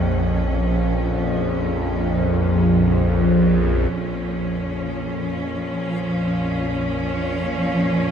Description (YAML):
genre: dark ambient drone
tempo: free time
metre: none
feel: none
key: Bb minor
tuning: A4 = 440 Hz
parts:
  - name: warm studio cello section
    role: sustained chords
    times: 0.0-8.1 s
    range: Bb2 to Db4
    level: -24 LUFS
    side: equal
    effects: none
  - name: bowed-like drone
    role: drone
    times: 0.0-8.1 s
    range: Bb1 to F2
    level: -20 LUFS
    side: equal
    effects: built-in reverb, phaser
  - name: backwards swelling texture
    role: texture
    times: 5.0-8.1 s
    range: F5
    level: -37 LUFS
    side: equal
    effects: built-in reverb
room: wet cathedral reverb, RT60 6.4 s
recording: none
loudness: -19 LUFS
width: side -8 dB against mid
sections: 0.0-3.9 A section; 3.9-8.1 B section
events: none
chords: 0.0 Bbm